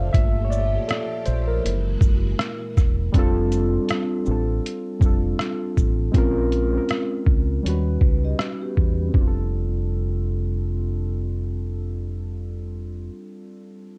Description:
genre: lo-fi hip hop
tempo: 80 BPM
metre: 4/4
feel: swing 59% on 16ths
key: F major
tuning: A4 = 440 Hz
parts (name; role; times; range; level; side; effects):
- muted felt-like synth keys; accompaniment; 0.0-14.0 s; G3 to F5; -29 LUFS; equal; chorus, cassette tape
- phased string machine; sustained chords; 0.0-3.1 s; Bb2 to A4; -39 LUFS; equal; ensemble chorus, phaser
- deep dub fingered electric bass; bass; 0.0-13.1 s; Fb1 to E2; -26 LUFS; equal; none
- trip hop sampler-style drum kit; drums; 0.1-9.3 s; hi-hat, kick drum, rim click, shaker; -22 LUFS; equal; none
- vibraphone with soft mallets; second line; 8.2-9.1 s; B3 to Eb5; -38 LUFS; equal; analog delay
room: light reverb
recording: cassette tape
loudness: -23 LUFS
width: mono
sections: 0.0-3.1 A section; 3.1-9.1 B section; 9.1-12.1 C section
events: synth keys solo 0.0-3.1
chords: 0.1 Gm9; 1.6 Gb9; 3.1 F69; 6.1 Bbm9; 7.6 Eb7alt; 9.1 F69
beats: | 0.14 0.89 1.64 2.39 | 3.14 3.89 4.64 5.39 | 6.14 6.89 7.64 8.39 | 9.14 9.89 10.64 11.39

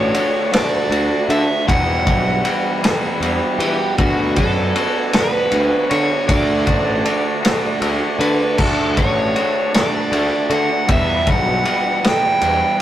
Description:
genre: indie rock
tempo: 52 BPM (dotted quarters)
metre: 6/8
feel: straight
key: D major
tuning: A4 = 440 Hz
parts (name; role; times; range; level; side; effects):
- crunchy overdriven guitar; melody; 0.0-12.8 s; F#4 to G5; -20 LUFS; equal; none
- mellow tonewheel organ; sustained chords; 0.0-12.8 s; G3 to D6; -28 LUFS; equal; none
- crunchy overdriven guitar; riff; 0.0-12.8 s; E2 to G4; -23 LUFS; right 6 dB; none
- twangy electric guitar; riff; 0.0-12.8 s; E2 to F#4; -25 LUFS; left 6 dB; none
- fuzz picked electric bass; bass; 0.0-12.6 s; A1 to E3; -21 LUFS; equal; overdrive
- vintage drum kit; drums; 0.1-12.8 s; crash cymbal, kick drum, ride cymbal, snare drum; -19 LUFS; equal; none
room: moderate studio reverb, RT60 0.5 s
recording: rough rehearsal-room recording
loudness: -15 LUFS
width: side -12 dB against mid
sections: 0.0-12.8 A section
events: none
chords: 0.0 D; 1.7 Emadd9; 4.0 Bmadd9/D; 6.3 D; 10.9 Emadd9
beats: 0.53 | 1.68 2.83 | 3.98 5.13 | 6.29 7.44 | 8.59 9.74 | 10.89 12.04

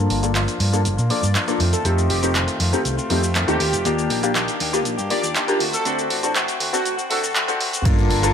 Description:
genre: filtered disco house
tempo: 120 BPM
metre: 4/4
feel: straight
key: unclear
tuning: A4 = 442 Hz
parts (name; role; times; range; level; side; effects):
- clear concert grand piano; accompaniment; 0.0-8.3 s; A3 to A4; -23 LUFS; left 2 dB; phaser, sidechain pumping, low-pass filter
- direct-recorded clean electric guitar; riff; 0.0-8.3 s; Eb3 to G4; -27 LUFS; left 2 dB; sidechain pumping, low-pass filter
- overdriven fingered electric bass; bass; 0.0-8.3 s; F1 to Bb2; -23 LUFS; right 1 dB; sidechain pumping, low-pass filter
- punchy analog drum machine; drums; 0.1-8.3 s; crash cymbal, handclaps, hi-hat, shaker; -24 LUFS; equal; sidechain pumping on perc, high-pass filter on perc, high-pass filter on snare, sidechain pumping on hats, high-pass filter on hats, sidechain pumping on cymbals, high-pass filter on cymbals, high-pass filter on room
- analog synth brass; melody; 1.1-7.3 s; F#4 to D5; -28 LUFS; right 1 dB; chorus, sidechain pumping, low-pass filter, ping-pong delay
- electronic kick drum; drums; 7.9-8.0 s; none; -19 LUFS; equal; none
room: moderate lush hall reverb, RT60 2.1 s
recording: high-pass filter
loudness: -18 LUFS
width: side -8 dB against mid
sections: 0.0-7.9 A section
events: build-up 0.0-7.9; filter sweep 0.0-7.9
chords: 0.0 Gm7; 1.6 F7; 3.9 Ebmaj7; 5.6 D7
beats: 0.35 0.85 1.35 | 1.85 2.35 2.85 3.35 | 3.85 4.35 4.85 5.35 | 5.85 6.35 6.85 7.35 | 7.85

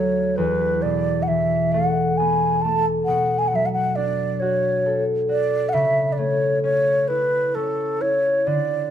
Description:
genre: celtic folk, Celtic slow air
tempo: 45 BPM (dotted quarters)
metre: 6/8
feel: rubato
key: unclear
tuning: A4 = 439 Hz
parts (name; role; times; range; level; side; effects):
- mellow hollow wooden flute; melody; 0.0-8.9 s; A4 to A5; -20 LUFS; right 1 dB; none
- concert harp; accompaniment; 0.0-8.9 s; D2 to A4; -23 LUFS; left 1 dB; none
room: light reverb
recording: close, detailed microphones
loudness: -18 LUFS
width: side -9 dB against mid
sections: 0.4-8.9 A section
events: none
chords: 0.4 Esus4; 3.1 Bm7; 5.7 A/C#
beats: | 0.37 1.75 | 3.08 4.41 | 5.75 7.10 | 8.47

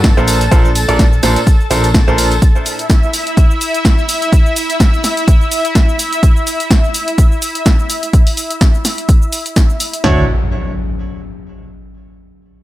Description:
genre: piano house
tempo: 126 BPM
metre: 4/4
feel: swing 56% on 16ths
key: unclear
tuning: A4 = 435 Hz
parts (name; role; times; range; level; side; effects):
- analog string pad; sustained chords; 0.0-10.1 s; E4 to A5; -19 LUFS; equal; ensemble chorus, sidechain pumping
- plucky analog bass; bass; 0.0-2.4, 10.0-10.3 s; Bb1 to G2; -16 LUFS; equal; sidechain pumping
- punchy analog drum machine; drums; 0.0-10.2 s; kick drum, snare drum, toms; -10 LUFS; equal; none
- punchy analog drum machine; drums; 0.0-10.0 s; hi-hat, shaker, snare drum; -18 LUFS; equal; none
- tambourine; percussion; 0.0-2.4 s; none; -26 LUFS; right 1 dB; none
- bright baby grand piano; riff; 0.2-2.3, 10.0-10.2 s; Bb2 to D5; -16 LUFS; right 1 dB; sidechain pumping, digital delay
- impact; sound effects; 10.0-11.9 s; none; -20 LUFS; equal; none
room: little or no reverb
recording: none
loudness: -10 LUFS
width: side -15 dB against mid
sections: 0.0-10.0 A section; 10.0-11.9 B section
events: none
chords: 0.3 Bbmaj9; 2.4 N.C.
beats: 0.04 | 0.52 0.99 1.47 1.94 | 2.42 2.90 3.37 3.85 | 4.33 4.80 5.28 5.75 | 6.23 6.71 7.18 7.66 | 8.13 8.61 9.09 9.56 | 10.04 10.52 10.99 11.47

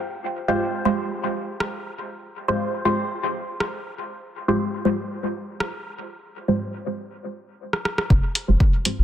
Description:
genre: dub techno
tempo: 120 BPM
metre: 4/4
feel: straight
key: F minor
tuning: A4 = 440 Hz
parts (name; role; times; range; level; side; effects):
- filtered dub chord stab; stabs; 0.5-9.0 s; Ab3 to C5; -24 LUFS; equal; phaser, sidechain pumping, dub echo
- soft vintage rhythm box; drums; 1.6-9.0 s; hi-hat, rim click; -27 LUFS; equal; dub echo
- soft dub sub bass; bass; 8.1-9.0 s; F1; -18 LUFS; equal; sidechain pumping
- electronic kick drum; drums; 8.1-8.7 s; none; -17 LUFS; equal; none
room: moderate spring reverb, RT60 2.6 s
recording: dense, heavily limited modern master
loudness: -22 LUFS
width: side -11 dB against mid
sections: 0.0-8.1 A section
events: drum fill 7.7-8.1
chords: 0.0 Fmadd9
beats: | 0.10 0.60 1.10 1.60 | 2.10 2.60 3.10 3.60 | 4.10 4.60 5.10 5.60 | 6.10 6.60 7.10 7.60 | 8.10 8.60

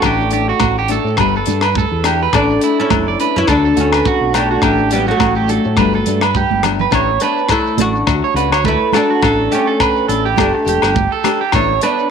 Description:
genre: highlife guitar band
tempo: 104 BPM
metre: 4/4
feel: swing 54% on 16ths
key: A mixolydian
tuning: A4 = 438 Hz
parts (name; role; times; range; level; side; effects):
- oud; melody; 0.0-12.1 s; F#3 to F#4; -17 LUFS; left 1 dB; none
- nylon-string guitar; accompaniment; 0.0-12.0 s; E3 to G4; -22 LUFS; left 13 dB; none
- electric guitar at the edge of break-up; arpeggios; 0.0-12.1 s; E4 to D5; -17 LUFS; right 9 dB; spring reverb, slapback echo
- fingered electric bass; bass; 0.0-11.8 s; E1 to A2; -20 LUFS; left 1 dB; none
- tight funk drum kit; drums; 0.0-12.0 s; hi-hat, kick drum, rim click; -23 LUFS; left 1 dB; none
- agogo bells; percussion; 0.0-11.7 s; none; -21 LUFS; left 16 dB; none
- congas; percussion; 0.0-11.6 s; none; -22 LUFS; right 14 dB; none
- shekere; percussion; 0.0-12.0 s; none; -25 LUFS; right 4 dB; none
room: light reverb, studio reverb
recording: 1960s-style stereo with parts hard left and right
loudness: -12 LUFS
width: side -6 dB against mid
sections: 0.0-6.9 A section; 6.9-12.1 B section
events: drum fill 6.2-6.9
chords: 0.0 Asus4; 1.2 Gsus2; 2.3 Asus4; 3.5 D; 4.6 Asus4; 5.8 Gsus2; 6.9 Asus4; 8.1 D; 9.2 Asus4; 10.4 Gsus2; 11.5 Asus4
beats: | 0.03 0.60 1.18 1.75 | 2.33 2.90 3.48 4.05 | 4.63 5.20 5.78 6.35 | 6.93 7.50 8.08 8.65 | 9.23 9.80 10.38 10.96 | 11.53

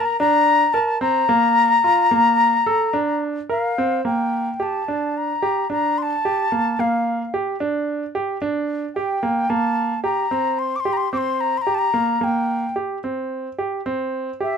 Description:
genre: contemporary instrumental, contemporary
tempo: 110 BPM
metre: 5/4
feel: straight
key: unclear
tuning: A4 = 440 Hz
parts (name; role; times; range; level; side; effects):
- wooden flute; melody; 0.0-14.6 s; E5 to D6; -19 LUFS; left 3 dB; none
- clear concert grand piano; arpeggios; 0.0-14.6 s; Bb3 to Bb4; -22 LUFS; right 3 dB; none
room: light reverb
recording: close, detailed microphones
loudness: -18 LUFS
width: side -7 dB against mid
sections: 0.0-4.0 A section; 4.0-14.6 B section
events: none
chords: 0.0 Gm (rootless); 1.3 Bb; 4.0 Gmadd9; 9.5 C5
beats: 0.20 0.74 | 1.29 1.84 2.39 2.94 3.50 | 4.05 4.60 5.15 5.70 6.24 | 6.79 7.33 7.88 8.42 8.96 | 9.50 10.04 10.58 11.12 11.66 | 12.21 12.76 13.30 13.86 14.40

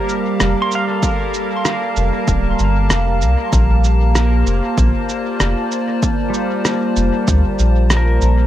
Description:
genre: ambient dub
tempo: 96 BPM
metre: 4/4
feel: straight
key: unclear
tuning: A4 = 439 Hz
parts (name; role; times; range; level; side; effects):
- warbly tape-like pad; sustained chords; 0.0-8.5 s; G3 to A5; -20 LUFS; equal; chorus, built-in reverb
- pedal steel guitar; arpeggios; 0.0-8.5 s; G3 to C6; -24 LUFS; right 2 dB; dub echo
- bubbling stepped-filter texture; texture; 0.0-8.5 s; Bb3 to Bb4; -25 LUFS; equal; chorus, built-in reverb
- electronic cabasa and rim click; drums; 0.1-8.3 s; none; -21 LUFS; right 1 dB; dub echo
- soft dub sub bass; bass; 0.4-8.5 s; D1 to D2; -14 LUFS; equal; none
- electronic kick drum; drums; 1.0-7.4 s; none; -20 LUFS; equal; overdrive
room: light reverb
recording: none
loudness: -14 LUFS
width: side -12 dB against mid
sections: 0.0-8.5 A section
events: none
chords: 0.0 Gm7; 3.5 Bbmaj7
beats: 0.40 | 1.03 1.65 2.28 2.90 | 3.53 4.15 4.78 5.40 | 6.03 6.65 7.28 7.90

